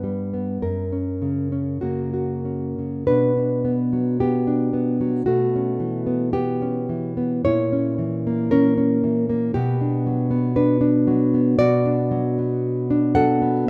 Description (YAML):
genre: romantic piece for solo classical guitar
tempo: 45-60 BPM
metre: 2/4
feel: rubato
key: B minor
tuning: A4 = 442 Hz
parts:
  - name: nylon-string guitar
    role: solo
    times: 0.0-13.7 s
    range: F#2 to F#5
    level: -21 LUFS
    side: equal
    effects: none
room: moderate recital hall reverb, RT60 1.9 s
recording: none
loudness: -21 LUFS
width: mono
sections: 0.0-3.1 A section; 3.1-13.7 B section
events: none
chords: 0.0 G; 0.6 F#; 3.1 Bm; 5.3 C#m7b5/B; 7.5 A#dim; 9.6 Bm